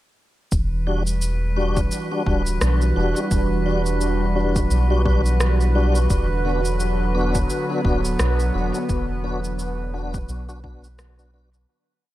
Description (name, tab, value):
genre	ambient dub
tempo	86 BPM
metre	4/4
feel	swing 58% on 16ths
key	E minor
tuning	A4 = 438 Hz
part	warm analog pad	sustained chords	0.5-11.7 s	D3 to B4	-26 LUFS	right 1 dB	chorus
part	soft dub sub bass	bass	0.5-11.7 s	D1 to B1	-21 LUFS	equal	tube saturation
part	electronic cabasa and rim click	drums	0.5-11.7 s	none	-29 LUFS	equal	none
part	electronic kick drum	drums	0.5-10.8 s	none	-24 LUFS	equal	none
part	drifting glass-harmonics texture	texture	0.8-11.7 s	B4	-32 LUFS	right 3 dB	chorus, built-in reverb
part	tonewheel organ	stabs	0.9-11.5 s	G3 to F#4	-27 LUFS	left 2 dB	overdrive, chorus vibrato, slow rotary speaker, dub echo
room	digital ambience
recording	none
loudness	-19 LUFS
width	side -15 dB against mid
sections	0.5-11.7 groove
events	fade-out 8.0-11.7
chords	0.5 Em9; 6.1 Bm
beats	| 0.52 1.22 1.92 2.62 | 3.31 4.01 4.71 5.41 | 6.10 6.80 7.50 8.20 | 8.89 9.59 10.29 10.99